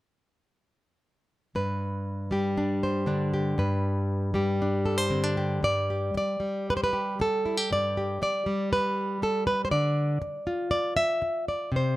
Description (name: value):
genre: folk, solo fingerstyle acoustic guitar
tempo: 119 BPM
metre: 4/4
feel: rubato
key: G mixolydian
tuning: A4 = 440 Hz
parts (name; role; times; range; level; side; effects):
- nylon-string guitar; solo; 1.6-12.0 s; G2 to E5; -25 LUFS; equal; none
room: little or no reverb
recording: close, detailed microphones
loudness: -25 LUFS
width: side -16 dB against mid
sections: 1.6-5.6 A section; 5.6-12.0 B section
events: none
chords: 1.6 G; 9.7 Dmadd9